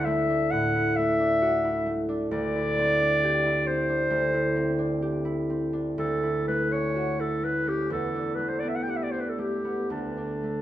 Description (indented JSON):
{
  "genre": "classical, impressionist duo for clarinet and harp",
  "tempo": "56-68 BPM",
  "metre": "4/4",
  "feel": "rubato",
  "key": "D mixolydian",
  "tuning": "A4 = 440 Hz",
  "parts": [
    { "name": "warm clarinet", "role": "melody", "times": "0.0-10.6 s", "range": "D4 to G5", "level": "-26 LUFS", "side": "left 1 dB", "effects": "none" },
    { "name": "concert harp", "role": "accompaniment", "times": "0.0-10.6 s", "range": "D2 to G4", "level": "-27 LUFS", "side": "right 1 dB", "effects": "none" }
  ],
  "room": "wet recital hall reverb, RT60 1.5 s",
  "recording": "none",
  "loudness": "-24 LUFS",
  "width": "side -12 dB against mid",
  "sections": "0.0-10.6 A section",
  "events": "none",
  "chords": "0.0 Dadd9; 2.3 Cadd9/D; 6.0 Dmaj9; 7.9 Em11; 9.9 D",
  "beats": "0.51 1.41 | 2.32 3.23 4.11 5.03 | 5.99 6.96 7.91 8.88 | 9.91"
}